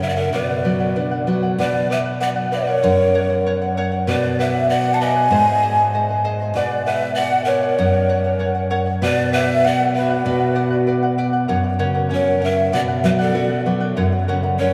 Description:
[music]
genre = andean folk, Andean ensemble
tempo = 97 BPM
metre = 2/4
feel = straight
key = B harmonic minor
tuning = A4 = 443 Hz
[part]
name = breathy mellow large quena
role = melody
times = 0.0-14.7 s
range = B4 to A5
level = -23 LUFS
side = equal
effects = none
[part]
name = breathy large pan pipes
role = second line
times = 0.0-14.7 s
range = F#4 to F#5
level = -27 LUFS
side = equal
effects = none
[part]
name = charango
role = accompaniment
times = 0.0-14.7 s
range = G#4 to F#5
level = -27 LUFS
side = equal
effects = none
[part]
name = nylon-string guitar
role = accompaniment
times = 0.0-14.7 s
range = F#2 to F#4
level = -23 LUFS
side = equal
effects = none
[sound]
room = wet cathedral reverb, RT60 6.7 s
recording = in a vast, echoing space, studio reverb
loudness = -18 LUFS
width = mono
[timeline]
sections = 0.0-1.6 A section; 1.6-11.5 B section; 11.5-14.7 A section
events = none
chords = 0.3 Bm; 2.8 F#; 4.1 Bm; 5.3 G#; 6.5 Bm; 7.8 F#; 9.0 Bm; 11.5 F#; 12.7 Bm; 14.0 F#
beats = | 0.33 0.95 | 1.58 2.20 | 2.83 3.45 | 4.07 4.69 | 5.31 5.93 | 6.54 7.16 | 7.78 8.40 | 9.02 9.64 | 10.25 10.87 | 11.49 12.11 | 12.73 13.35 | 13.97 14.59

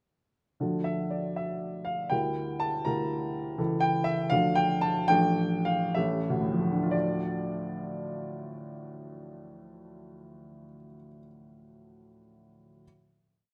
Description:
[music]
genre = classical, romantic character piece for solo piano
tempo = 59-84 BPM (dotted quarters)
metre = 6/8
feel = rubato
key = D minor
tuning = A4 = 443 Hz
[part]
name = warm baby grand piano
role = solo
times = 0.6-12.9 s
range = A1 to Bb5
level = -29 LUFS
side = equal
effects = none
[sound]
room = moderate large studio reverb, RT60 1.4 s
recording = none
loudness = -29 LUFS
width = mono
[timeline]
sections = 0.6-6.9 A section; 6.9-10.7 final chord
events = slowing down 2.9-6.9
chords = 0.6 Dm; 2.1 Em7b5/D; 3.6 A/C#; 4.3 Dm; 5.1 Dm/A; 6.0 A7; 6.9 Dm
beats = | 0.61 1.37 | 2.12 2.86 | 3.59 4.32 | 5.10 5.96 | 6.93 7.87 | 8.81 9.74

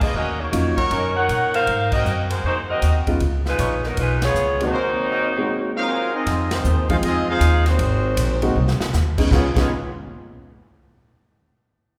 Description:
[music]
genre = jazz, big band swing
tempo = 157 BPM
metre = 4/4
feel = swing 65% on 8ths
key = Db major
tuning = A4 = 440 Hz
[part]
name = dark saxophone section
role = melody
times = 0.0-5.9 s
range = Gb3 to Gb5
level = -24 LUFS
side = equal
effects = none
[part]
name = upright bass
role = bass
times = 0.0-9.7 s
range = Ab1 to Bb2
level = -24 LUFS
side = equal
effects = none
[part]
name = swinging big-band drum kit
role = drums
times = 0.0-9.6 s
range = crash cymbal, hi-hat, kick drum, ride cymbal, snare drum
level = -29 LUFS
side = equal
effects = none
[part]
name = clear concert grand piano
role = accompaniment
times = 0.5-0.8, 3.1-9.7 s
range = F3 to Ab4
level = -28 LUFS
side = equal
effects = none
[part]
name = clear trumpet section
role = stabs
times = 0.8-6.3 s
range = Eb4 to Eb5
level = -31 LUFS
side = equal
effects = none
[part]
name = warm trombone section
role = second line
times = 4.6-9.7 s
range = Db3 to F4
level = -30 LUFS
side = equal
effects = none
[part]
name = warm trumpet section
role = melody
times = 5.8-9.7 s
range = Ab3 to F5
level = -27 LUFS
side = equal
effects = none
[sound]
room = wet recital hall reverb, RT60 1.6 s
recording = recorded in a church or concert hall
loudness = -20 LUFS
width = mono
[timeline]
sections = 0.0-6.3 A section; 6.3-9.3 B section; 9.3-10.8 C section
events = band accent 1.9, 4.2, 6.5; drum fill 8.6-8.9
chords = 0.1 Ebm7; 1.7 Ab9; 3.2 Db9; 4.7 Ab9; 6.3 Fm7; 7.8 Ab7; 9.3 Db9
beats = | 0.14 0.53 0.91 1.29 | 1.67 2.06 2.44 2.82 | 3.20 3.59 3.97 4.35 | 4.73 5.12 5.50 5.88 | 6.26 6.64 7.03 7.41 | 7.79 8.17 8.55 8.94 | 9.32 9.70

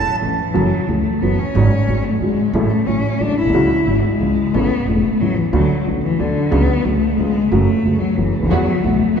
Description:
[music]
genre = tango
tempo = 181 BPM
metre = 3/4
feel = rubato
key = F# minor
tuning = A4 = 441 Hz
[part]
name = warm cello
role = second line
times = 0.0-9.2 s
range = D3 to E4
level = -18 LUFS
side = left 3 dB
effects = none
[part]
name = dark upright piano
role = accompaniment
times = 0.2-9.2 s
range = E1 to A4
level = -20 LUFS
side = equal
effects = none
[part]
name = upright bass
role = bass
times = 0.2-9.0 s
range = E1 to E2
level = -20 LUFS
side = right 2 dB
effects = none
[part]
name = dark studio string section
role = stabs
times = 8.5-9.2 s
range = B3 to F#4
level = -25 LUFS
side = right 3 dB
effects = none
[sound]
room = wet cathedral reverb, RT60 5.0 s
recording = recorded in a church or concert hall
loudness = -14 LUFS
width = side -7 dB against mid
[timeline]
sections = 0.5-9.2 A section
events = cello solo 0.5-9.2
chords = 0.0 A; 0.5 F#m7; 1.5 C#sus4/G#; 2.5 F#m7/A; 3.5 C#sus4; 4.2 C#; 4.5 Aadd9; 5.5 D6; 6.5 F#m/C#; 7.2 C#7; 7.5 F#m; 8.5 Esus2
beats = 0.21 | 0.55 0.88 1.21 | 1.54 1.88 2.21 | 2.54 2.87 3.20 | 3.54 3.87 4.20 | 4.53 4.87 5.20 | 5.53 5.86 6.19 | 6.53 6.86 7.19 | 7.52 7.85 8.19 | 8.52 8.85 9.18

